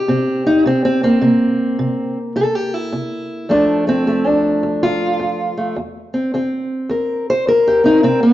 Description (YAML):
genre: acoustic country blues, solo or duo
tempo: 106 BPM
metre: 4/4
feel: swing 64% on 8ths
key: C mixolydian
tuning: A4 = 440 Hz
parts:
  - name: fingerpicked steel-string acoustic guitar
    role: solo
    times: 0.0-8.3 s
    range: E2 to C5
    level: -14 LUFS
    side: equal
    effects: none
room: moderate large studio reverb, RT60 1.4 s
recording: band playing live in one room, nothing above 7.6 kHz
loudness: -14 LUFS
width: side -14 dB against mid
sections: 0.0-8.3 A section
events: none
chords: 0.0 C7; 3.5 F; 5.8 C7